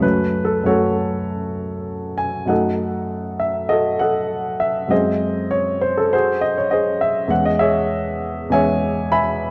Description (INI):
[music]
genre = classical, romantic character piece for solo piano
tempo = 98 BPM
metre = 4/4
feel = rubato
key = C# minor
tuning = A4 = 440 Hz
[part]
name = warm baby grand piano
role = solo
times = 0.0-9.5 s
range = E2 to B5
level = -20 LUFS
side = equal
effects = none
[sound]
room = moderate scoring stage reverb, RT60 1.6 s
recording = dark, warm production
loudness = -20 LUFS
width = mono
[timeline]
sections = 0.0-9.5 A section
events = none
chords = 0.0 F#m; 2.5 D#dim/F#; 4.9 G#7/F#; 7.3 C#m/E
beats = | 0.03 0.66 1.28 1.89 | 2.50 3.11 3.70 4.30 | 4.91 5.52 6.13 6.72 | 7.30 7.91 8.52 9.13